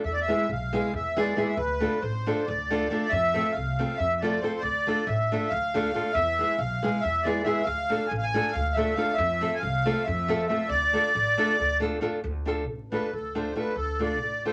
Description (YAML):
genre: balkan folk, Balkan wedding band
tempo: 276 BPM (eighths)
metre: 7/8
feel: straight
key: D dorian sharp4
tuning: A4 = 439 Hz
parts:
  - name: accordion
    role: melody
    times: 0.0-14.5 s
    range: A4 to G#5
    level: -29 LUFS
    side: equal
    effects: light tremolo tuning
  - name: upright bass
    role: bass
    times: 0.0-14.5 s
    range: A1 to F2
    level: -35 LUFS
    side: equal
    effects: none
  - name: nylon-string guitar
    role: accompaniment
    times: 0.3-14.5 s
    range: G#3 to A4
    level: -31 LUFS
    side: equal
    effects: none
room: wet club reverb, RT60 0.7 s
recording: vinyl crackle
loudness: -26 LUFS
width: mono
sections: 0.0-12.2 A section; 12.2-14.5 B section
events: accordion solo 12.2-14.5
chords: 0.0 E; 1.6 Dm; 3.1 F; 4.6 Dm; 6.1 E; 7.7 Dm; 9.2 F; 10.7 Dm